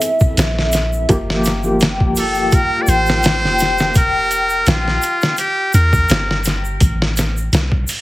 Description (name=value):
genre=trip hop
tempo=84 BPM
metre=4/4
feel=swing 54% on 16ths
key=G dorian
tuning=A4 = 435 Hz
part: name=felt-muted upright piano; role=accompaniment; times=0.0-4.0 s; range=E3 to A4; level=-20 LUFS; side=equal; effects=tremolo, tape echo
part: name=dark analog pad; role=sustained chords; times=0.0-6.8 s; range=E5 to G5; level=-22 LUFS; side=left 1 dB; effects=chorus
part: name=trip hop sampler-style drum kit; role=drums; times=0.0-8.0 s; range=hi-hat, kick drum, snare drum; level=-17 LUFS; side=equal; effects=small room ambience
part: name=tube shaker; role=percussion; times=0.0-8.0 s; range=none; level=-28 LUFS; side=right 1 dB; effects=none
part: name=soft 808-style bass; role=bass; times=0.4-7.8 s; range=F1 to E2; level=-19 LUFS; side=equal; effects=none
part: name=trumpet with metal mute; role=melody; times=2.2-6.4 s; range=F4 to D5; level=-18 LUFS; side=equal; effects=tape echo
room=light reverb, small room ambience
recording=heavily compressed radio sound, multiband compression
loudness=-13 LUFS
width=side -17 dB against mid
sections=0.0-8.0 A section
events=none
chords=0.0 Am; 1.1 Gm7; 6.8 Am